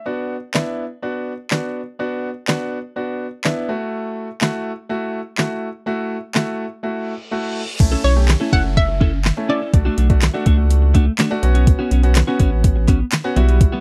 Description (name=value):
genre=dance-pop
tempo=124 BPM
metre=4/4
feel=straight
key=B minor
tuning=A4 = 442 Hz
part: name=clear concert grand piano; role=accompaniment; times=0.0-13.8 s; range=G3 to G4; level=-26 LUFS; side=equal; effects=sidechain pumping
part: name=smooth R&B drum kit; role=drums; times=0.5-13.7 s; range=crash cymbal, handclaps, hi-hat, kick drum, snare drum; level=-19 LUFS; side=equal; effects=none
part: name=reverse cymbal and downlifter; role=sound effects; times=7.0-11.7 s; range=none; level=-36 LUFS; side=equal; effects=none
part: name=clean electric guitar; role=riff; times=7.8-13.8 s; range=G3 to A4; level=-25 LUFS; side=equal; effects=lush chorus
part: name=warm sub bass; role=bass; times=7.8-13.7 s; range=F#1 to C#2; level=-18 LUFS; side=equal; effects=sidechain pumping
part: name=hollow square pluck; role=melody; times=8.0-9.9 s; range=C#5 to F#5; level=-25 LUFS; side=equal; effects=chorus, delay
part: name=group handclap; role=percussion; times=12.2-13.2 s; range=none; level=-33 LUFS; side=equal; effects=none
room=little or no reverb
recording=dark, warm production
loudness=-19 LUFS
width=mono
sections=0.0-7.8 A section; 7.8-13.8 B section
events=reverse cymbal 7.0-7.8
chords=0.1 Bm; 3.7 F#m7; 7.8 A; 9.7 D/B; 11.4 Bsus2